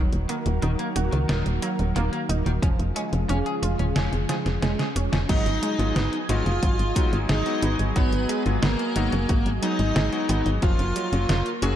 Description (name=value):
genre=synthwave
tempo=90 BPM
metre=4/4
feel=straight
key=G# dorian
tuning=A4 = 444 Hz
part: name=lush unison pad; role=sustained chords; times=0.0-11.8 s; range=C#3 to A#5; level=-31 LUFS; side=equal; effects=chorus
part: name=wide unison pluck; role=arpeggios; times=0.0-11.8 s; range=E#3 to A#4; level=-32 LUFS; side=right 5 dB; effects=digital delay
part: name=tight sequencer bass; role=bass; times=0.0-11.8 s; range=D#1 to C#2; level=-24 LUFS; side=equal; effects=sidechain pumping
part: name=detuned 8-bit digital drum machine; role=drums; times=0.1-11.8 s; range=crash cymbal, hi-hat, snare drum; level=-29 LUFS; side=equal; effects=none
part: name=electric guitar at the edge of break-up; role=riff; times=0.3-5.2 s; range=D#3 to G#4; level=-34 LUFS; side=left 2 dB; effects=wide subtle chorus, digital delay
part: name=electronic kick drum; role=drums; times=2.6-10.8 s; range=none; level=-24 LUFS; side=equal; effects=none
part: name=dark smooth lead guitar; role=melody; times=5.3-11.8 s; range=A#3 to F#4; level=-28 LUFS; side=left 1 dB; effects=overdrive, digital delay
part: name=airy dreamy lead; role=second line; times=5.3-11.8 s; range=A#4 to F#5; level=-33 LUFS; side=right 1 dB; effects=chorus, digital delay
part: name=clear electric grand piano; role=stabs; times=5.3-11.8 s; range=F#3 to G#4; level=-32 LUFS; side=left 4 dB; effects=digital delay
room=light reverb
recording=dark, warm production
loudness=-21 LUFS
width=side -11 dB against mid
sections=0.0-5.3 A section; 5.3-11.8 B section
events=drum fill 4.3-5.3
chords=0.0 D#m; 2.6 C#; 5.3 G#m7; 10.6 F#maj7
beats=0.63 1.29 1.96 | 2.63 3.29 3.96 4.63 | 5.29 5.96 6.63 7.29 | 7.96 8.63 9.29 9.96 | 10.63 11.29